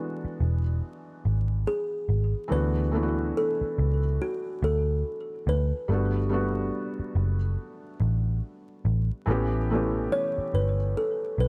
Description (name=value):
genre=hip hop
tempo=71 BPM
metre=4/4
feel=swing 61% on 16ths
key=D major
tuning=A4 = 440 Hz
part: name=kalimba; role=melody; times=0.0-11.5 s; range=F#4 to C#5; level=-32 LUFS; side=equal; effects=tape echo
part: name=felt-muted upright piano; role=accompaniment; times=0.0-11.5 s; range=E3 to G4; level=-34 LUFS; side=equal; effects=cassette tape
part: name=vintage muted picked electric bass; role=bass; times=0.2-11.5 s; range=E1 to D2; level=-28 LUFS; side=equal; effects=none
room=light reverb, studio reverb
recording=vinyl crackle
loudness=-27 LUFS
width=mono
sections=0.0-11.5 A section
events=none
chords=0.0 E9; 2.5 D69; 5.9 Gmaj9; 9.3 A9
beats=0.81 1.66 | 2.50 3.35 4.19 5.04 | 5.88 6.73 7.57 8.42 | 9.26 10.11 10.95